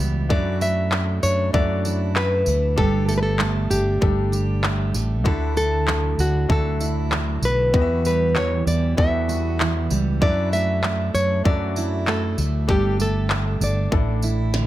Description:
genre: acoustic pop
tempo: 97 BPM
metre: 4/4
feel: straight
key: D major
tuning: A4 = 440 Hz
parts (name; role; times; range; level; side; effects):
- clear baby grand piano; accompaniment; 0.0-14.7 s; B3 to E5; -32 LUFS; left 8 dB; none
- picked steel-string acoustic guitar; accompaniment; 0.0-14.7 s; E2 to G4; -27 LUFS; right 5 dB; none
- fretless electric bass; bass; 0.0-14.7 s; G1 to F#2; -22 LUFS; equal; analog chorus
- nylon-string guitar; melody; 0.3-14.7 s; F#4 to E5; -24 LUFS; left 1 dB; none
- glitchy drum kit; drums; 0.3-14.7 s; handclaps, kick drum, snare drum, tambourine; -24 LUFS; equal; none
room: small room reverb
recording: none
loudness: -18 LUFS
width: side -14 dB against mid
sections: 0.0-14.7 A section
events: none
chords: 0.3 Dadd9/F#; 2.8 Gsus2; 5.3 Dadd9; 7.7 Emadd9; 10.2 Dadd9/F#; 12.7 Gsus2; 13.9 Asus4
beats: | 0.30 0.92 1.54 2.16 | 2.78 3.40 4.02 4.64 | 5.26 5.88 6.50 7.12 | 7.74 8.36 8.98 9.60 | 10.21 10.83 11.45 12.07 | 12.69 13.31 13.93 14.54

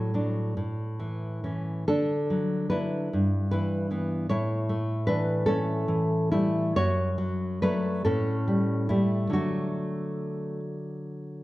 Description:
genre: romantic piece for solo classical guitar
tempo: 44-52 BPM (dotted quarters)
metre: 6/8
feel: rubato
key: D major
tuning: A4 = 440 Hz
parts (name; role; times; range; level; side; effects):
- nylon-string guitar; solo; 0.0-11.4 s; F#2 to C#5; -25 LUFS; equal; none
room: moderate recital hall reverb, RT60 1.5 s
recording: dark, warm production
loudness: -25 LUFS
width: side -17 dB against mid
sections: 0.0-11.4 A section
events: none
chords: 0.0 D/A; 0.6 A; 1.9 D; 3.1 Em/G; 4.3 A; 6.8 D/F#; 8.0 A7; 9.3 D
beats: 0.58 | 1.88 3.12 | 4.30 5.46 | 6.76 8.05 | 9.34 10.63

